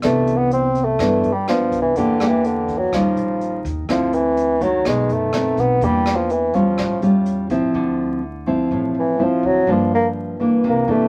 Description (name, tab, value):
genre	bossa nova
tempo	124 BPM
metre	4/4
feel	straight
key	D minor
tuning	A4 = 439 Hz
part	mellow bassoon	melody	0.0-11.1 s	D3 to C4	-21 LUFS	equal	none
part	nylon-string guitar	accompaniment	0.0-11.1 s	G2 to G4	-21 LUFS	equal	none
part	upright bass	bass	0.0-11.1 s	G1 to G2	-31 LUFS	equal	none
part	jazz brush drum kit	drums	0.0-7.6 s	hi-hat, kick drum, rim click	-33 LUFS	equal	none
room	light reverb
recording	vinyl crackle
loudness	-19 LUFS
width	mono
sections	0.0-7.7 A section; 7.7-11.1 B section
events	bassoon solo 7.7-11.1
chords	0.0 Cmaj9; 2.0 Em7b5; 2.9 Eb9; 3.9 Dsus2; 4.8 B7b9; 5.8 Em7b5; 6.8 A7b13; 7.7 Dm9; 9.7 Gm7